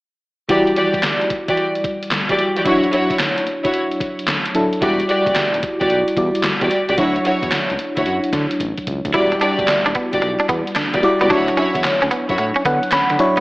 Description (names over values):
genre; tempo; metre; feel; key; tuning
R&B, new jack swing; 111 BPM; 4/4; swing 66% on 16ths; unclear; A4 = 440 Hz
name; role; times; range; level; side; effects
FM electric piano with tremolo; accompaniment; 0.5-13.4 s; F#3 to B5; -19 LUFS; equal; phaser
warm studio string section; stabs; 0.5-12.4 s; E3 to D5; -20 LUFS; equal; none
gated 80s digital drum machine; drums; 0.5-13.4 s; handclaps, hi-hat, kick drum, snare drum; -23 LUFS; equal; gated reverb, gated reverb snare, overdrive
smooth synth bass; bass; 4.8-13.4 s; E1 to D3; -25 LUFS; equal; none
direct-recorded clean electric guitar; riff; 9.1-13.4 s; B3 to E4; -21 LUFS; right 1 dB; wide subtle chorus
room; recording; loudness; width
moderate echo chamber reverb, RT60 1.8 s; AM radio sound; -15 LUFS; side -21 dB against mid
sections
0.5-9.1 A section; 9.1-13.4 B section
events
drum fill 8.6-9.1; FM electric piano fill 12.4-13.4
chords
0.5 Em9; 2.7 Dmaj9; 4.8 Em9; 7.0 Dmaj9; 9.1 Em9; 11.3 Dmaj9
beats
| 0.49 1.03 1.57 2.11 | 2.65 3.19 3.74 4.28 | 4.82 5.36 5.90 6.44 | 6.98 7.52 8.06 8.60 | 9.14 9.68 10.22 10.76 | 11.30 11.84 12.38 12.93